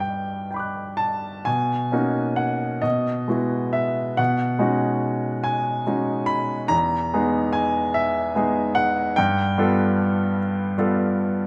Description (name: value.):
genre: classical, impressionist solo piano.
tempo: 40-51 BPM (dotted quarters).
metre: 6/8.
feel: rubato.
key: B mixolydian.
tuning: A4 = 440 Hz.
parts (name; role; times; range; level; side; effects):
clear baby grand piano; solo; 0.0-11.5 s; E2 to F#6; -23 LUFS; equal; none.
room: wet recital hall reverb, RT60 1.6 s.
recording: none.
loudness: -23 LUFS.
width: mono.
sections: 0.0-1.5 A section; 1.5-11.5 B section.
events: none.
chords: 0.0 Gmaj7; 1.5 Bmaj9; 2.8 Eadd9/B; 4.2 B69; 6.7 Emaj7#11; 9.2 G9.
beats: 0.02 | 1.47 2.84 | 4.19 5.46 | 6.72 7.97 | 9.17 10.39.